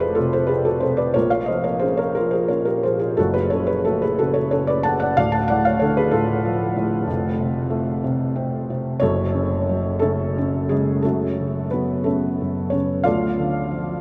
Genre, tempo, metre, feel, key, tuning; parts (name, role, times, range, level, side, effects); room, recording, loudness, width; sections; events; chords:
classical, lyrical solo piano; 60 BPM (dotted quarters); 6/8; rubato; F# harmonic minor; A4 = 439 Hz
felt-muted upright piano; solo; 0.0-14.0 s; D1 to A5; -21 LUFS; equal
wet huge ambient reverb, RT60 7.8 s; in a vast, echoing space; -21 LUFS; mono
0.0-11.0 A section; 11.0-14.0 B section
0.0 F; 1.2 A#m; 3.2 F#m; 5.2 Dm; 7.1 F; 9.0 F#m; 13.1 Dm